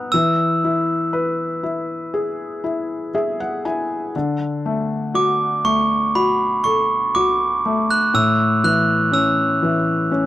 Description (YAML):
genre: children's music, lullaby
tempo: 60 BPM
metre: 4/4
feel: straight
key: unclear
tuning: A4 = 440 Hz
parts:
  - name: glockenspiel with hard plastic mallets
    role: melody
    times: 0.0-10.3 s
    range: B5 to F#6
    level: -18 LUFS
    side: right 2 dB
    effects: none
  - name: felt-muted upright piano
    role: accompaniment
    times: 0.0-10.3 s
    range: A2 to G#5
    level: -20 LUFS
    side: left 2 dB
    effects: none
room: light reverb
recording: dry, close 1970s-style studio recording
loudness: -17 LUFS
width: side -14 dB against mid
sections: 0.0-4.1 A section; 4.1-10.3 B section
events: felt piano fill 2.6-4.1, 10.1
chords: 0.1 E; 4.1 D; 8.1 A